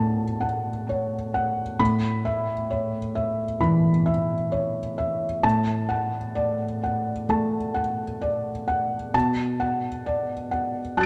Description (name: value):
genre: neoclassical minimalist piano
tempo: 65 BPM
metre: 4/4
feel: rubato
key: unclear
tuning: A4 = 441 Hz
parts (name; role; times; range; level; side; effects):
- felt-muted upright piano; solo; 0.0-11.1 s; D2 to A6; -25 LUFS; equal; tape echo
room: light reverb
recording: dark, warm production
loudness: -25 LUFS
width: mono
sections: 0.0-11.1 A section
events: none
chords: 0.0 Dmaj7; 1.8 Aadd9; 5.4 D/A; 9.1 Bm7